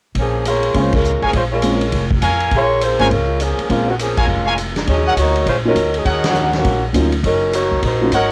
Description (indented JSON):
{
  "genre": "jazz, big band swing",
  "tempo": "204 BPM",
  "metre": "4/4",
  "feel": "swing 61% on 8ths",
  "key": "Bb minor",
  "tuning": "A4 = 440 Hz",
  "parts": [
    { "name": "upright bass", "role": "bass", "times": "0.1-8.3 s", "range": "F1 to F2", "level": "-23 LUFS", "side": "equal", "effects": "none" },
    { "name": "swinging big-band drum kit", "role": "drums", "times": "0.1-8.2 s", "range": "hi-hat, kick drum, ride cymbal, snare drum", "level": "-25 LUFS", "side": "equal", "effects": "cassette tape" },
    { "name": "dark saxophone section", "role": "melody", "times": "0.2-8.3 s", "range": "Eb3 to Db5", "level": "-20 LUFS", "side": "equal", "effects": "cassette tape" },
    { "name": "dark upright piano", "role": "accompaniment", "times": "0.8-8.1 s", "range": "Gb3 to F4", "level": "-21 LUFS", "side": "equal", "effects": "cassette tape" },
    { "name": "bright trumpet section", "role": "stabs", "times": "1.2-8.3 s", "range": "Bb4 to Ab5", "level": "-21 LUFS", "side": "equal", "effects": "cassette tape, plate reverb" }
  ],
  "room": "moderate booth ambience, RT60 0.2 s",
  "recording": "home recording on cassette",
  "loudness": "-17 LUFS",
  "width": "mono",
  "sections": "0.2-8.3 A section",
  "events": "band accent 0.9, 4.1, 6.2",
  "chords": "0.2 Bbm7; 4.9 Ebm7",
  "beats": "| 0.16 0.46 0.75 1.05 | 1.34 1.64 1.93 2.23 | 2.52 2.82 3.11 3.40 | 3.70 3.99 4.29 4.58 | 4.88 5.17 5.47 5.76 | 6.06 6.35 6.65 6.94 | 7.24 7.53 7.82 8.12"
}